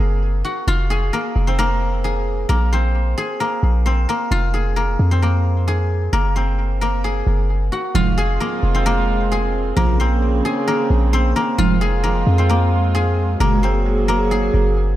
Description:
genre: hip hop.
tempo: 132 BPM.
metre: 4/4.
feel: half-time.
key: F phrygian.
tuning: A4 = 444 Hz.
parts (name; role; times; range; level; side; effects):
guzheng; melody; 0.0-15.0 s; Bb3 to Ab5; -21 LUFS; left 1 dB; analog delay.
warm 808-style bass; bass; 0.0-15.0 s; F1 to F2; -18 LUFS; equal; none.
warm studio string section; sustained chords; 7.9-15.0 s; Db3 to Ab4; -22 LUFS; right 2 dB; none.
big bright polysynth; stabs; 7.9-13.6 s; C2 to Ab3; -24 LUFS; right 4 dB; chorus, analog delay.
room: light reverb, studio reverb.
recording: none.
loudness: -16 LUFS.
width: side -14 dB against mid.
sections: 0.0-7.9 A section; 7.9-15.0 B section.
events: none.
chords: 0.0 Gbadd9; 0.7 Fm; 2.5 Bbsus2; 4.3 Fm; 6.1 Gbadd9; 7.9 Fm; 9.8 Bbmadd9; 11.6 Fm; 13.4 Gbadd9.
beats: 0.22 | 0.68 1.13 1.58 2.04 | 2.49 2.95 3.40 3.86 | 4.31 4.77 5.22 5.68 | 6.13 6.58 7.04 7.49 | 7.95 8.40 8.86 9.31 | 9.77 10.22 10.68 11.13 | 11.59 12.04 12.49 12.95 | 13.40 13.86 14.31 14.77.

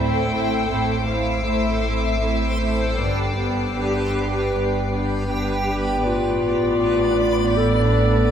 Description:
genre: cinematic, suspense film score.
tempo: 79 BPM.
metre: 4/4.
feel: straight.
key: unclear.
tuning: A4 = 440 Hz.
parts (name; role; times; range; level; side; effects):
muted studio violin section; melody; 0.0-8.3 s; D5 to B5; -31 LUFS; left 4 dB; none.
muted studio violin section; second line; 0.0-8.3 s; E4 to D5; -26 LUFS; right 3 dB; none.
muted studio viola section; accompaniment; 0.0-8.3 s; A3 to D4; -27 LUFS; equal; none.
backwards swelling texture; sustained chords; 0.0-8.3 s; D4 to B5; -27 LUFS; equal; built-in reverb.
muted studio cello section; bass; 0.0-8.3 s; G2 to A2; -28 LUFS; right 2 dB; none.
muted studio double bass section; bass; 0.0-8.3 s; G1 to A1; -25 LUFS; right 2 dB; none.
deep rumbling drone; drone; 0.0-8.3 s; G1 to A1; -28 LUFS; left 2 dB; built-in reverb.
muted studio violin section; texture; 0.0-5.6 s; D6 to C7; -30 LUFS; left 3 dB; none.
clear clarinet; second line; 5.7-8.3 s; F4 to A4; -21 LUFS; left 3 dB; none.
room: moderate recital hall reverb, RT60 1.5 s.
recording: none.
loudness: -18 LUFS.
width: side -8 dB against mid.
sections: 0.0-6.1 A section; 6.1-8.3 B section.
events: none.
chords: 0.0 Am7; 3.0 G; 6.1 Bm7b5/A.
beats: 0.69 1.45 2.20 | 2.97 3.75 4.52 5.29 | 6.06 6.82 7.57.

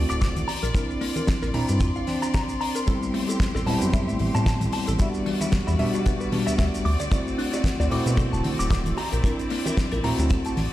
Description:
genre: nu-disco, nu disco.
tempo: 113 BPM.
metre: 4/4.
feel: swing 56% on 16ths.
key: unclear.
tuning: A4 = 440 Hz.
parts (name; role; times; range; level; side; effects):
bell-like tine electric piano; accompaniment; 0.0-10.5 s; G3 to F#4; -27 LUFS; equal; medium stereo tremolo, sidechain pumping, ping-pong delay.
bright studio string section; sustained chords; 0.0-10.7 s; G3 to C6; -34 LUFS; left 2 dB; sidechain pumping.
chorused synth bass; bass; 0.0-10.7 s; D1 to B2; -25 LUFS; equal; none.
direct-recorded clean electric guitar; riff; 0.1-10.5 s; E3 to D6; -32 LUFS; left 1 dB; analog chorus, ping-pong delay.
damped 70s drum kit; drums; 0.1-10.7 s; hi-hat, rim click, shaker, snare drum; -33 LUFS; left 1 dB; none.
kick drum; drums; 0.2-10.4 s; none; -23 LUFS; equal; none.
congas and bongos; percussion; 0.4-10.7 s; none; -32 LUFS; right 1 dB; none.
room: light reverb, small room ambience.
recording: played on a big sound system in a bare room, stone room reverb.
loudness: -21 LUFS.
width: side -14 dB against mid.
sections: 0.0-10.7 A section.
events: none.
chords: 0.5 Bbadd9; 2.9 Am7; 5.0 Em9; 6.9 D7; 9.0 Bbmaj9#11.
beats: 0.22 | 0.75 1.28 1.81 2.34 | 2.87 3.40 3.94 4.47 | 5.00 5.53 6.06 6.59 | 7.12 7.65 8.18 8.71 | 9.24 9.78 10.31.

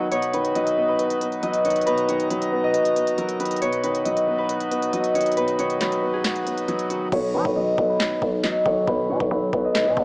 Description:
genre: hip hop, trap.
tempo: 137 BPM.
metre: 4/4.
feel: half-time.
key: B major.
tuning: A4 = 440 Hz.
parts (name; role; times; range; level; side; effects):
concert harp; melody; 0.0-10.0 s; F#4 to B5; -22 LUFS; equal; low-pass filter.
dark baby grand piano; accompaniment; 0.0-10.0 s; B2 to B4; -27 LUFS; equal; low-pass filter.
pedal harmonium; sustained chords; 0.0-7.1 s; F#3 to A#5; -27 LUFS; equal; none.
trap drum kit; drums; 0.1-10.0 s; crash cymbal, handclaps, hi-hat, kick drum, snare drum; -30 LUFS; equal; overdrive.
growling 808-style bass; bass; 7.1-10.0 s; B1 to F#3; -24 LUFS; equal; none.
room: light reverb.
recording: worn, warbling old tape, cassette tape, warbly pitch drift, small speaker sound.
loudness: -20 LUFS.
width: side -29 dB against mid.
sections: 0.1-7.1 A section; 7.1-10.0 B section.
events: hi-hats muted 7.1-10.0; filter sweep 7.1-10.0.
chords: 0.1 B.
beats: | 0.12 0.55 0.99 1.43 | 1.87 2.31 2.74 3.18 | 3.62 4.06 4.50 4.93 | 5.37 5.81 6.25 6.68 | 7.12 7.56 8.00 8.44 | 8.87 9.31 9.75.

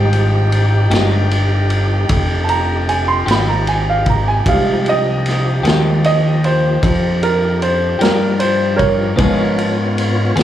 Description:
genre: slow blues.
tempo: 51 BPM (dotted quarters).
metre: 12/8.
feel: straight.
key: F minor.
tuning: A4 = 440 Hz.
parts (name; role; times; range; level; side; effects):
warm baby grand piano; accompaniment; 0.0-10.4 s; F3 to C6; -18 LUFS; right 3 dB; slapback echo.
tonewheel organ; sustained chords; 0.0-10.4 s; F3 to Db5; -24 LUFS; left 1 dB; slow rotary speaker, overdrive, chorus vibrato.
warm horn section; sustained chords; 0.0-10.4 s; F3 to G5; -27 LUFS; left 2 dB; none.
fat analog bass; bass; 0.0-10.4 s; F1 to Ab2; -16 LUFS; equal; none.
vintage drum kit; drums; 0.1-10.4 s; kick drum, ride cymbal, snare drum; -20 LUFS; equal; none.
clean electric guitar; accompaniment; 0.9-10.4 s; Db3 to Ab4; -23 LUFS; left 8 dB; harmonic tremolo.
room: small room ambience.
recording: live gig heard through the venue's PA, club ambience.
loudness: -13 LUFS.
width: side -11 dB against mid.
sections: 0.0-10.4 A section.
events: grand piano solo 0.0-10.4.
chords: 0.0 Fm9; 9.2 Db7.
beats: 0.91 2.09 3.27 | 4.45 5.63 6.82 8.00 | 9.18 10.36.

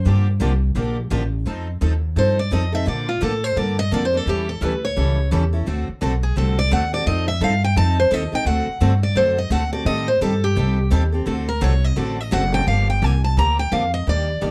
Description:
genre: acoustic string swing (jazz manouche).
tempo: 171 BPM.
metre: 4/4.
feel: swing 61% on 8ths.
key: G minor.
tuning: A4 = 442 Hz.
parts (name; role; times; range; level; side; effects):
upright bass; bass; 0.0-14.5 s; F#1 to Bb2; -22 LUFS; equal; none.
picked steel-string acoustic guitar; accompaniment; 0.1-14.5 s; D3 to A4; -30 LUFS; equal; none.
picked steel-string acoustic guitar; accompaniment; 0.1-12.4 s; D3 to A4; -32 LUFS; equal; none.
picked steel-string acoustic guitar; melody; 2.2-14.5 s; F4 to Bb5; -24 LUFS; equal; none.
room: light reverb.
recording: dark, warm production.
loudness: -20 LUFS.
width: mono.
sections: 0.0-1.5 A section; 1.5-12.7 A section; 12.7-14.5 A section.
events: steel-string acoustic guitar solo 1.5-14.5.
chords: 0.1 Gm9; 1.5 F7; 2.9 Bbmaj7; 4.3 A7; 5.7 D7; 7.1 F7; 8.5 D7; 9.9 Am7b5; 11.3 D7; 12.7 Gm7.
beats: | 0.06 0.41 0.76 1.11 | 1.46 1.81 2.16 2.51 | 2.86 3.21 3.56 3.91 | 4.26 4.62 4.97 5.32 | 5.67 6.02 6.37 6.72 | 7.07 7.42 7.77 8.12 | 8.47 8.82 9.17 9.52 | 9.87 10.22 10.57 10.92 | 11.27 11.62 11.97 12.32 | 12.67 13.02 13.37 13.72 | 14.07 14.42.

